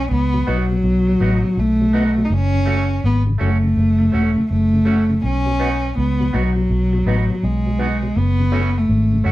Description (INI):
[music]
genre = reggae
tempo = 82 BPM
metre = 4/4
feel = swing 64% on 16ths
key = B mixolydian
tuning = A4 = 440 Hz
[part]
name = warm cello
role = melody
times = 0.0-9.3 s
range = F#3 to D#4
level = -18 LUFS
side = equal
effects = none
[part]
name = vintage muted fingered electric bass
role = bass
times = 0.0-9.3 s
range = E1 to C#2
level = -18 LUFS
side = equal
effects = none
[part]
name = mellow tonewheel organ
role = accompaniment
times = 0.3-9.3 s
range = F#2 to F#4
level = -28 LUFS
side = left 2 dB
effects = overdrive, chorus vibrato, slow rotary speaker
[part]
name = clean electric guitar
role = accompaniment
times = 0.5-9.3 s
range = A3 to F#4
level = -27 LUFS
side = right 4 dB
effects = none
[sound]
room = moderate studio reverb, RT60 0.7 s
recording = band playing live in one room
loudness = -15 LUFS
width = side -16 dB against mid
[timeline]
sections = 0.0-9.3 A section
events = none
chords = 0.0 B; 2.3 F#m; 5.2 B; 8.1 F#m